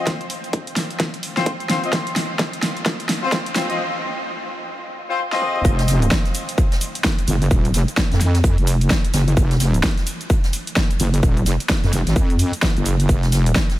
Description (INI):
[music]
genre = bass house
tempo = 129 BPM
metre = 4/4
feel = swing 61% on 16ths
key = unclear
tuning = A4 = 442 Hz
[part]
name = warm horn section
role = stabs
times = 0.0-5.6 s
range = C4 to Eb5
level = -25 LUFS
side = left 2 dB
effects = sidechain pumping, tape echo
[part]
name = big-room dance drum kit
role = drums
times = 0.1-13.8 s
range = cabasa, hi-hat, snare drum, toms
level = -24 LUFS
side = equal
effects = overdrive, small room ambience
[part]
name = electronic kick drum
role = drums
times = 0.1-13.7 s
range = none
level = -19 LUFS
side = equal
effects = overdrive, high-pass filter on kick, small room ambience
[part]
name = wobble bass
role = bass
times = 5.6-13.5 s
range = Eb1 to F2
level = -17 LUFS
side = equal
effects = chorus, sidechain pumping
[part]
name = jazz brush drum kit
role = drums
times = 5.7-13.8 s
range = hi-hat, snare drum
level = -34 LUFS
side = right 2 dB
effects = none
[sound]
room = light reverb, small room ambience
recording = high-pass filter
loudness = -17 LUFS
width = side -15 dB against mid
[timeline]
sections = 0.0-5.6 A section; 5.6-13.8 B section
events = build-up 0.0-5.6; drum fill 0.0-3.8, 5.3-5.6; break 3.8-5.6; drop 5.6-13.8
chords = 0.0 F5